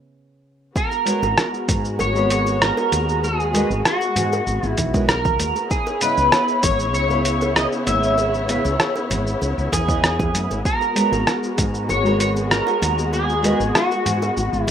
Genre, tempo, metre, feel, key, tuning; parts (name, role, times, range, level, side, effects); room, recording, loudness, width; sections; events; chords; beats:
sunset chillout; 97 BPM; 4/4; straight; G# minor; A4 = 437 Hz
nylon-string guitar; accompaniment; 0.0-13.6 s; C#3 to E5; -25 LUFS; right 1 dB; auto-pan, vintage 12-bit sampler grit
electric guitar at the edge of break-up; melody; 0.8-14.7 s; F#4 to E5; -22 LUFS; equal; analog chorus, digital delay, plate reverb
warm studio string section; sustained chords; 0.8-14.7 s; C#3 to C#5; -25 LUFS; left 2 dB; plate reverb
dusty soul sampler-style drum kit; drums; 0.8-14.7 s; hi-hat, rim click, shaker; -22 LUFS; equal; overdrive
electronic kick drum; drums; 0.8-14.7 s; -23 LUFS; equal
bongos and congas; percussion; 0.9-14.7 s; -30 LUFS; right 2 dB
woody fretless electric bass; bass; 1.2-14.7 s; G#1 to G#2; -24 LUFS; equal
wet studio reverb, RT60 0.6 s; rough home demo mix; -17 LUFS; side -9 dB against mid
0.8-14.7 A section
break 0.0-0.8
0.0 C#m9; 0.8 G#m11; 5.7 C#m7; 10.7 G#m11
0.14 | 0.76 1.38 2.00 2.61 | 3.23 3.85 4.47 5.09 | 5.71 6.33 6.94 7.56 | 8.18 8.80 9.42 10.04 | 10.65 11.27 11.89 12.51 | 13.13 13.75 14.37